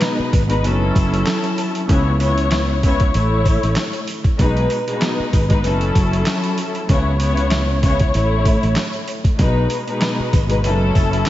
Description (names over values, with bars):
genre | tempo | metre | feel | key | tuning
hip hop, boom-bap hip-hop | 96 BPM | 4/4 | swing 55% on 16ths | unclear | A4 = 440 Hz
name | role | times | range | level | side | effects
muted studio string section | accompaniment | 0.0-11.3 s | A2 to C#5 | -19 LUFS | left 1 dB | cassette tape, high-pass filter, low-pass filter
boom bap sampler-style drum kit | drums | 0.0-11.3 s | handclaps, hi-hat, kick drum, snare drum | -19 LUFS | equal | none
sleigh bells | percussion | 0.0-11.3 s | none | -40 LUFS | right 7 dB | none
fretless electric bass | bass | 0.2-11.2 s | F#1 to C#2 | -19 LUFS | equal | none
room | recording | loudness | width
moderate lush hall reverb, RT60 2.6 s | dreamy mix soaked in reverb, vinyl crackle, nothing above 7.8 kHz | -15 LUFS | side -14 dB against mid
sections
0.0-11.3 A section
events
none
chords
0.0 B6; 0.6 F#m7; 1.9 C#m7; 3.1 A; 4.4 B6; 5.6 F#m7; 6.9 C#m7; 8.1 A; 9.4 B6; 10.6 F#m7